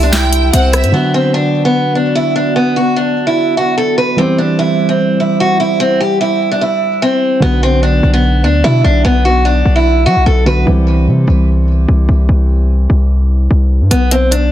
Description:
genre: hip hop, trap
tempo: 148 BPM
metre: 4/4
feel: half-time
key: B phrygian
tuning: A4 = 440 Hz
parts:
  - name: picked acoustic archtop guitar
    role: melody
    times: 0.0-10.6, 13.9-14.5 s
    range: B3 to B4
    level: -13 LUFS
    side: equal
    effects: low-pass filter, digital delay
  - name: dark concert grand piano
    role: accompaniment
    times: 0.0-13.9 s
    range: D3 to G4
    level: -18 LUFS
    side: right 2 dB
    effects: low-pass filter
  - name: warbly tape-like pad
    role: sustained chords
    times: 0.0-7.4 s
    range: G3 to C6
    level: -20 LUFS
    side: right 2 dB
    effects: chorus, built-in reverb
  - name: hard-hitting 808-style bass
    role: bass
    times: 0.0-0.9, 7.4-14.5 s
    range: B1 to F#3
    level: -11 LUFS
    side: equal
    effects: none
  - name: warm symphonic violin section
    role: second line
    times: 0.1-0.9 s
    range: E5 to G5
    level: -21 LUFS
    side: right 2 dB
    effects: digital delay
  - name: trap drum kit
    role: drums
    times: 0.1-0.9, 13.9-14.4 s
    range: handclaps, hi-hat, rim click, snare drum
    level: -16 LUFS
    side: equal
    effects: none
room: small room ambience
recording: dense, heavily limited modern master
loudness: -10 LUFS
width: side -12 dB against mid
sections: 0.9-7.4 A section; 7.4-14.5 B section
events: none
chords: 0.0 C; 0.9 Bm; 4.2 C; 7.4 Bm; 10.7 C; 13.9 Bm

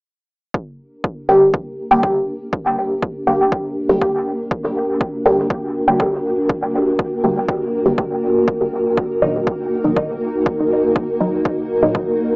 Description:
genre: dub techno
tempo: 121 BPM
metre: 4/4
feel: straight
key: G harmonic minor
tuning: A4 = 439 Hz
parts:
  - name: granular cloud pad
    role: sustained chords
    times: 1.6-12.4 s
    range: Bb3 to Bb4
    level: -19 LUFS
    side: equal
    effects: built-in reverb, sidechain pumping, cassette tape
  - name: electronic kick drum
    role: drums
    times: 0.5-12.1 s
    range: none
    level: -23 LUFS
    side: equal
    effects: overdrive
  - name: filtered dub chord stab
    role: stabs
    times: 1.3-11.9 s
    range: Bb2 to G4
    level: -16 LUFS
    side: equal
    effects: phaser, sidechain pumping, cassette tape, dub echo
room: wet studio reverb, RT60 0.5 s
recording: home recording on cassette, small speaker sound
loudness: -16 LUFS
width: side -38 dB against mid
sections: 0.5-12.4 A section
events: filter sweep on synth stab 0.5-12.4; filter sweep on ambient pad 0.5-12.4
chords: 0.5 Gm; 8.5 Ebm

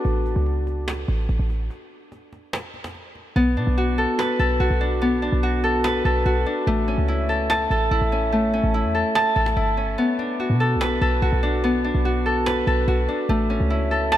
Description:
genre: hip hop, trap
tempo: 145 BPM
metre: 4/4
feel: half-time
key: B minor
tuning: A4 = 441 Hz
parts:
  - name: Celtic harp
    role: accompaniment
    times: 0.0-14.2 s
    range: A3 to A5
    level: -21 LUFS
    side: left 1 dB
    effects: low-pass filter
  - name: short 808-style bass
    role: bass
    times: 0.0-14.2 s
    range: G1 to B2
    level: -23 LUFS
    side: right 1 dB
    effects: none
  - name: cajon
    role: drums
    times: 0.1-14.2 s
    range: none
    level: -34 LUFS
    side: right 1 dB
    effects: none
room: light reverb, studio ambience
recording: none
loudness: -19 LUFS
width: side -12 dB against mid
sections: 0.0-14.2 A section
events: filter sweep on harp 0.0-3.4; break 0.1-3.4; hi-hats muted 3.4-10.0; kick muted 10.0-10.4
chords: 0.1 A; 3.4 Bm7; 6.7 A; 10.0 Bm7; 13.3 A

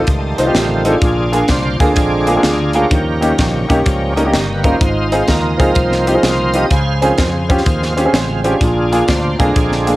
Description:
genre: uptempo gospel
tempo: 126 BPM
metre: 4/4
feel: swing 66% on 8ths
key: unclear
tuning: A4 = 440 Hz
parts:
  - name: bright tonewheel organ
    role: sustained chords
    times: 0.0-10.0 s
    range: D3 to F5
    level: -18 LUFS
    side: right 1 dB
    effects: slow rotary speaker, overdrive, chorus vibrato, plate reverb
  - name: rich studio string section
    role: sustained chords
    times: 0.0-10.0 s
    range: C5 to Eb6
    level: -29 LUFS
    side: left 2 dB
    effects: plate reverb
  - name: fingered electric bass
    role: bass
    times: 0.0-10.0 s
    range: G1 to F2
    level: -20 LUFS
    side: equal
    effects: none
  - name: crisp fusion drum kit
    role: drums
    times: 0.1-9.9 s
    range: hi-hat, kick drum, snare drum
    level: -17 LUFS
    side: equal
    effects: none
  - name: clear grand piano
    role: accompaniment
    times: 0.4-9.9 s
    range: Ab2 to C5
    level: -16 LUFS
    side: equal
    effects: plate reverb
room: moderate booth ambience, RT60 0.3 s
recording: home recording on cassette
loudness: -12 LUFS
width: side -17 dB against mid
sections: 0.0-10.0 A section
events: tonewheel organ solo 0.0-10.0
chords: 0.0 F7; 1.0 Bb7; 2.9 Eb7; 4.8 Ab6; 6.7 Dbmaj7; 8.6 Bb7

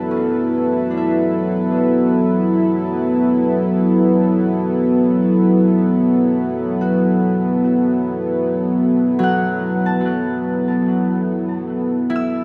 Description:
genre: ambient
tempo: free time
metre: none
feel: none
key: unclear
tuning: A4 = 440 Hz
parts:
  - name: warm analog pad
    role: sustained chords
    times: 0.0-12.4 s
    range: F#3 to B4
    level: -18 LUFS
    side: equal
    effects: chorus
  - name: Celtic harp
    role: arpeggios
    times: 0.0-12.4 s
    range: F#3 to E6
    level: -28 LUFS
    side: equal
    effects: tape echo
room: wet lush hall reverb, RT60 3.1 s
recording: dreamy mix soaked in reverb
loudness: -17 LUFS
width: mono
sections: 0.0-12.4 A section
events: fade-in on harp 0.0-12.4; fade-out 11.4-12.4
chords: 0.0 Esus2

